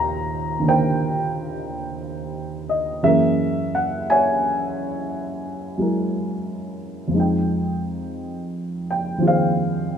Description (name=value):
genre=jazz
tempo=58 BPM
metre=4/4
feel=swing 69% on 8ths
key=unclear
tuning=A4 = 440 Hz
part: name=dark upright piano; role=solo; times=0.0-10.0 s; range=Eb2 to C6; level=-20 LUFS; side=equal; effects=none
room=moderate echo chamber reverb, RT60 2.2 s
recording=minimal, uncompressed stereo recording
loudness=-20 LUFS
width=side -8 dB against mid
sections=0.0-10.0 A section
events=none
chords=0.0 Eb6; 3.0 F#9; 7.1 Fm9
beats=0.93 1.96 | 2.99 4.03 5.06 6.09 | 7.12 8.16 9.19